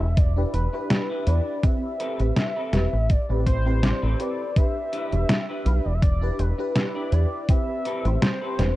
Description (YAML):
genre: vaporwave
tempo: 82 BPM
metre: 4/4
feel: swing 54% on 16ths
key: A minor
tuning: A4 = 440 Hz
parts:
  - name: warm velvety synth lead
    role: melody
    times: 0.0-8.8 s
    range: B4 to F5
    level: -30 LUFS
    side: equal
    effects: chorus, tape echo
  - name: FM electric piano with soft pad layer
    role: accompaniment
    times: 0.0-8.8 s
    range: C4 to E5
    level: -31 LUFS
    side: equal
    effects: phaser, ensemble chorus
  - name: semi-hollow electric guitar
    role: riff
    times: 0.0-8.6 s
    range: C4 to D5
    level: -35 LUFS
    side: left 1 dB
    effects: ensemble chorus
  - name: deep dub fingered electric bass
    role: bass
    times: 0.0-8.7 s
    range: E1 to E2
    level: -22 LUFS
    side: equal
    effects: tube saturation
  - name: detuned 8-bit digital drum machine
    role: drums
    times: 0.2-8.7 s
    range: hi-hat, snare drum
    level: -24 LUFS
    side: equal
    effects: overdrive, vintage 12-bit sampler grit
  - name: electronic kick drum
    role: drums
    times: 0.2-7.6 s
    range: none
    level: -20 LUFS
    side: equal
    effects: overdrive, vintage 12-bit sampler grit
room: digital ambience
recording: dark, warm production, cassette tape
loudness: -21 LUFS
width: side -17 dB against mid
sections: 0.0-8.8 A section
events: none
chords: 0.0 Em7; 1.6 Am9; 4.6 Em7; 7.5 Am9